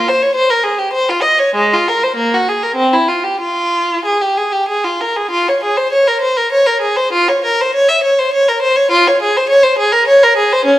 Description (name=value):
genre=classical, baroque-style suite movement for unaccompanied violin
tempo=93-103 BPM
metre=3/4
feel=rubato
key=F minor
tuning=A4 = 440 Hz
part: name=rich violin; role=solo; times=0.0-10.8 s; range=Ab3 to E5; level=-11 LUFS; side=equal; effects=none
room=moderate recital hall reverb, RT60 1.4 s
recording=none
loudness=-11 LUFS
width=side -14 dB against mid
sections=0.0-5.3 A section; 5.3-10.8 B section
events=none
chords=none